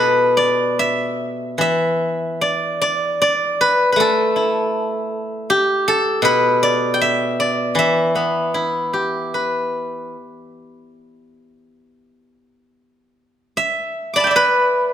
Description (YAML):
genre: chinese traditional, Chinese solo plucked strings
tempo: 66-80 BPM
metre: 4/4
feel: rubato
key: E yu mode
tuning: A4 = 439 Hz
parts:
  - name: steel-string zither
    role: solo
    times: 0.0-14.9 s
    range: B2 to D6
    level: -16 LUFS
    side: equal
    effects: none
room: moderate recital hall reverb, RT60 1.7 s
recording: none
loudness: -16 LUFS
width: side -9 dB against mid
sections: 0.0-12.7 A section; 12.7-14.9 B section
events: none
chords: none